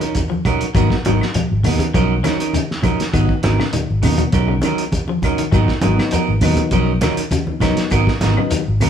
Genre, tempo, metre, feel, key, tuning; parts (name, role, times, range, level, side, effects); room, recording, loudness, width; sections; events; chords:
afrobeat; 100 BPM; 4/4; straight; G# dorian; A4 = 441 Hz
electric guitar at the edge of break-up; arpeggios; 0.0-8.9 s; B2 to F#3; -23 LUFS; left 7 dB
clean electric guitar; stabs; 0.0-8.9 s; F#3 to A#4; -21 LUFS; right 6 dB
cloth-damped thuddy drum kit; drums; 0.0-8.9 s; hi-hat, kick drum, snare drum; -22 LUFS; equal
congas; percussion; 0.2-8.9 s; -23 LUFS; right 2 dB
shekere; percussion; 0.2-8.9 s; -26 LUFS; left 2 dB
claves; percussion; 0.5-8.9 s; -35 LUFS; left 5 dB
fingered electric bass; bass; 0.6-8.9 s; G#1 to D#2; -19 LUFS; equal
barky tine electric piano; accompaniment; 6.0-8.9 s; F#3 to D#4; -24 LUFS; left 5 dB
moderate large studio reverb, RT60 1.2 s; band playing live in one room; -15 LUFS; side -8 dB against mid
0.0-8.9 A section
0.0 Bmaj9 (rootless); 0.8 G#m9; 2.0 Bmaj9; 3.1 G#m9; 4.3 Bmaj9; 5.5 G#m9; 6.7 Bmaj9; 7.9 G#m9